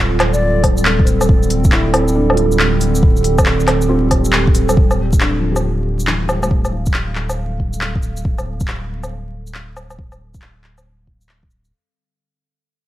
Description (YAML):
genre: future garage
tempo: 138 BPM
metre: 4/4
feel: swing 64% on 16ths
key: D minor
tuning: A4 = 439 Hz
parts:
  - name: felt-muted upright piano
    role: accompaniment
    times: 0.0-11.7 s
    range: E3 to C5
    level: -24 LUFS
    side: left 1 dB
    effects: sidechain pumping, low-pass filter, tape echo
  - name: warbly tape-like pad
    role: sustained chords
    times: 0.0-11.7 s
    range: D3 to F5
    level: -20 LUFS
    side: right 2 dB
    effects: chorus, built-in reverb, sidechain pumping
  - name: warm sub bass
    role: bass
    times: 0.0-11.7 s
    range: D1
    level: -19 LUFS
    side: equal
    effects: sidechain pumping
  - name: organic electronic drum kit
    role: drums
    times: 0.2-11.7 s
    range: handclaps, hi-hat, shaker, woodblock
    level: -19 LUFS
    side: left 1 dB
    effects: none
  - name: mellow hollow jazz flute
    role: melody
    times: 0.3-0.6 s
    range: D5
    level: -24 LUFS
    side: left 2 dB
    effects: analog delay
  - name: electronic kick drum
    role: drums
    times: 0.6-11.5 s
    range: none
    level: -15 LUFS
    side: equal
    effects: none
room: light reverb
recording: vinyl crackle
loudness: -13 LUFS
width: side -14 dB against mid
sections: 0.0-4.8 A section; 4.8-11.7 B section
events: fade-out 4.8-11.7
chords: 0.0 F6/D; 4.8 Dmadd9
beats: 0.42 0.85 | 1.29 1.72 2.16 2.59 | 3.02 3.46 3.90 4.33 | 4.76 5.20 5.63 6.07 | 6.50 6.94 7.37 7.81 | 8.24 8.68 9.11 9.55 | 9.98 10.42 10.85 11.29